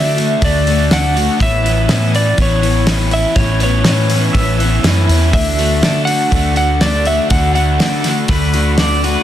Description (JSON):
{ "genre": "folk rock and heartland rock", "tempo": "122 BPM", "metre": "4/4", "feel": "straight", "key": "D major", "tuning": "A4 = 438 Hz", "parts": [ { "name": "electric slide guitar", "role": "melody", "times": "0.0-9.0 s", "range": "C#5 to F#5", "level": "-19 LUFS", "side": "equal", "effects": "none" }, { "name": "picked twelve-string acoustic guitar", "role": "accompaniment", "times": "0.0-9.2 s", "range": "A2 to F#4", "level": "-20 LUFS", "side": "left 6 dB", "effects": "none" }, { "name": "mellow tonewheel organ", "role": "sustained chords", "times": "0.0-9.2 s", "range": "E4 to B5", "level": "-29 LUFS", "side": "equal", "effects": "slow rotary speaker" }, { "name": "crunchy overdriven guitar", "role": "riff", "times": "0.0-9.2 s", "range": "A2 to F#4", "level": "-20 LUFS", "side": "right 1 dB", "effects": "none" }, { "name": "vintage muted fingered electric bass", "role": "bass", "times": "0.0-9.2 s", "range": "A1 to D3", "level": "-16 LUFS", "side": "equal", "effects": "none" }, { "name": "cloth-damped thuddy drum kit", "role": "drums", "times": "0.2-9.2 s", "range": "hi-hat, kick drum, snare drum", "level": "-18 LUFS", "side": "equal", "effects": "none" }, { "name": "pedal steel guitar", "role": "second line", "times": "4.3-4.8, 8.3-9.2 s", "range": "B4 to E5", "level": "-22 LUFS", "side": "right 1 dB", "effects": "none" } ], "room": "light reverb, studio ambience", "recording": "dense, heavily limited modern master", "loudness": "-11 LUFS", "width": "side -11 dB against mid", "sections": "0.0-9.2 A section", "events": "none", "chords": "0.0 D; 1.4 Aadd9; 5.3 D" }